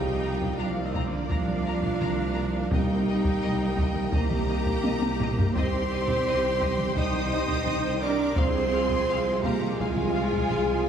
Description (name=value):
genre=cinematic, epic orchestral film score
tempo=85 BPM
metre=4/4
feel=straight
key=C minor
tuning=A4 = 439 Hz
part: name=rich studio violin section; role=second line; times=0.0-10.9 s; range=D5 to Eb6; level=-35 LUFS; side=left 2 dB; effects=none
part: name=rich symphonic viola section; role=accompaniment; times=0.0-10.9 s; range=Bb3 to C5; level=-34 LUFS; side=right 1 dB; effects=none
part: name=mellow French horn section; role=sustained chords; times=0.0-10.9 s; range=D4 to Eb5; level=-30 LUFS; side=left 1 dB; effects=none
part: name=warm symphonic string section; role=sustained chords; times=0.0-10.9 s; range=Ab3 to G5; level=-38 LUFS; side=equal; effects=none
part: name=warm trombone section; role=sustained chords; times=0.0-10.9 s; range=Eb3 to Bb3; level=-37 LUFS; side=right 4 dB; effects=none
part: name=clear symphonic double bass section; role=bass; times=0.0-10.9 s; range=C2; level=-34 LUFS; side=right 2 dB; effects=none
part: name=dark tuba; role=bass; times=0.0-10.9 s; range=C2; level=-33 LUFS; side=right 2 dB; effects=none
part: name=rich symphonic cello section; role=bass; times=0.0-10.9 s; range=D3 to Eb4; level=-31 LUFS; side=right 2 dB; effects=none
part: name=warm symphonic violin section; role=melody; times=0.2-10.6 s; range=Eb5 to Bb5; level=-41 LUFS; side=left 3 dB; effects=none
part: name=taiko ensemble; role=drums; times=0.4-10.9 s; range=none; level=-30 LUFS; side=equal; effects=none
part: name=timpani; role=percussion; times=2.7-3.7 s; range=C3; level=-34 LUFS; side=left 2 dB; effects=none
room=moderate scoring stage reverb, RT60 1.9 s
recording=small room ambience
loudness=-23 LUFS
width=side -8 dB against mid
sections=0.0-10.9 A section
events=drum fill 4.8-5.5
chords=0.0 Bb/C; 2.7 Eb/C; 5.5 Cm; 8.4 Fm/C